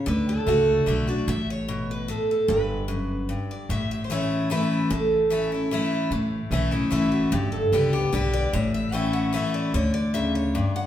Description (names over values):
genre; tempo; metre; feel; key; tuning
bluegrass; 149 BPM; 3/4; straight; A mixolydian; A4 = 440 Hz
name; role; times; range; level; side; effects
picked steel-string acoustic guitar; melody; 0.0-10.9 s; D#4 to G5; -26 LUFS; right 2 dB; none
picked steel-string acoustic guitar; accompaniment; 0.0-10.9 s; F#2 to G4; -25 LUFS; left 2 dB; none
upright bass; bass; 0.1-10.6 s; G1 to D2; -27 LUFS; equal; none
room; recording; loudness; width
wet large studio reverb, RT60 1.5 s; heard from further back in the room; -22 LUFS; side -11 dB against mid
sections
0.0-6.1 A section; 6.1-10.9 B section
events
steel-string acoustic guitar solo 6.1-10.9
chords
0.1 D; 1.3 A; 2.5 G; 3.7 A; 7.3 G; 8.5 A; 9.7 Dmaj7(no3)